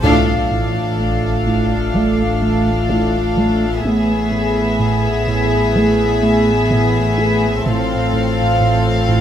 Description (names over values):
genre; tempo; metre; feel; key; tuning
cinematic, suspense film score; 63 BPM; 4/4; straight; unclear; A4 = 440 Hz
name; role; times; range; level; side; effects
warm symphonic violin section; melody; 0.0-9.2 s; E5 to F5; -22 LUFS; left 1 dB; none
warm symphonic violin section; second line; 0.0-9.2 s; G#4 to A4; -24 LUFS; left 4 dB; none
rich symphonic viola section; accompaniment; 0.0-9.2 s; B3 to D4; -24 LUFS; equal; none
mellow French horn section; sustained chords; 0.0-9.2 s; A3 to G#4; -22 LUFS; left 2 dB; none
smooth gliding synth bass; riff; 0.0-9.2 s; A2 to A3; -19 LUFS; right 2 dB; none
dark studio double bass section; bass; 0.0-9.2 s; A1; -23 LUFS; right 1 dB; none
warm symphonic cello section; bass; 0.0-9.2 s; A2; -23 LUFS; right 2 dB; none
warm sub bass; drone; 0.0-9.2 s; A1; -26 LUFS; left 1 dB; none
swell and sub drop; sound effects; 0.0-3.8 s; none; -28 LUFS; left 1 dB; none
room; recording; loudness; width
wet stone room reverb, RT60 1.0 s; none; -14 LUFS; side -10 dB against mid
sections
0.0-9.2 A section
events
band accent 0.0-1.0; impact 0.0-3.8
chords
0.0 F6/A; 3.8 E/A; 7.7 F/A